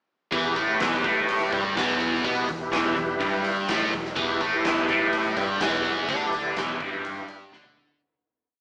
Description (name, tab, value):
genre	blues rock power trio and southern rock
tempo	125 BPM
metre	4/4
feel	straight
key	E minor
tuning	A4 = 440 Hz
part	overdriven tonewheel organ	sustained chords	0.3-8.0 s	E4 to B5	-32 LUFS	equal	slow rotary speaker, chorus vibrato
part	cranked stack guitar	riff	0.3-8.0 s	E2 to D4	-26 LUFS	equal	overdrive, phaser
part	vintage muted picked electric bass	bass	0.3-8.0 s	E1 to D2	-48 LUFS	equal	none
part	huge arena drum kit	drums	0.3-8.0 s	hi-hat, kick drum, snare drum, toms	-33 LUFS	equal	none
room	wet stone room reverb, RT60 1.3 s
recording	band playing live in one room, small speaker sound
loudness	-25 LUFS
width	mono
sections	0.3-8.0 riff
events	fade-out 6.1-8.0; tonewheel organ fill 6.6-8.0; drum fill 7.5-8.0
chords	0.3 Em